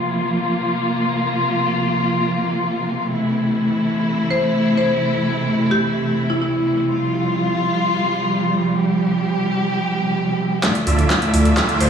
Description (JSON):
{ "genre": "EDM, festival progressive house", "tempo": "free time", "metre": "none", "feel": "none", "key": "D minor", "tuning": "A4 = 440 Hz", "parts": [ { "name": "warm chamber string section", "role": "sustained chords", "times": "0.0-11.9 s", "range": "C3 to E5", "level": "-18 LUFS", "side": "equal", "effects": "sidechain pumping, low-pass filter" }, { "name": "marimba with medium hard mallets", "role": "melody", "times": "4.3-6.9, 11.8-11.9 s", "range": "E4 to C5", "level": "-22 LUFS", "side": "left 2 dB", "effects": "digital delay" }, { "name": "dense compressed supersaw", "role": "riff", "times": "10.6-11.9 s", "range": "A3 to G5", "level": "-19 LUFS", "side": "equal", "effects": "sidechain pumping, low-pass filter, digital delay" }, { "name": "big-room dance drum kit", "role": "drums", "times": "10.6-11.9 s", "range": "handclaps, hi-hat", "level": "-21 LUFS", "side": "equal", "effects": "overdrive, high-pass filter on snare, low-pass filter on snare, small room ambience, high-pass filter on hats, low-pass filter on hats" }, { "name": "electronic kick drum", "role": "drums", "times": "10.6-11.7 s", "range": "none", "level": "-22 LUFS", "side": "equal", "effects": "overdrive, high-pass filter on kick, small room ambience" }, { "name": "riser", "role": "sound effects", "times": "11.1-11.9 s", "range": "none", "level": "-26 LUFS", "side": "right 1 dB", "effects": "none" }, { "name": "wide detuned saw bass", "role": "bass", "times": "10.9-11.9 s", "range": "D2", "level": "-17 LUFS", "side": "right 1 dB", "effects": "chorus, sidechain pumping" } ], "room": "moderate digital room reverb, RT60 1.4 s, digital ambience", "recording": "played on a big sound system in a bare room, stone room reverb, small room ambience", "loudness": "-17 LUFS", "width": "side -7 dB against mid", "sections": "0.0-10.6 A section; 10.6-11.9 B section", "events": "build-up 10.6-11.9; drum fill 10.6-11.9; riser 11.1-11.9", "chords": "0.0 Bbsus2; 3.1 Am; 6.9 Csus4; 10.6 Dmadd9", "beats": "free time" }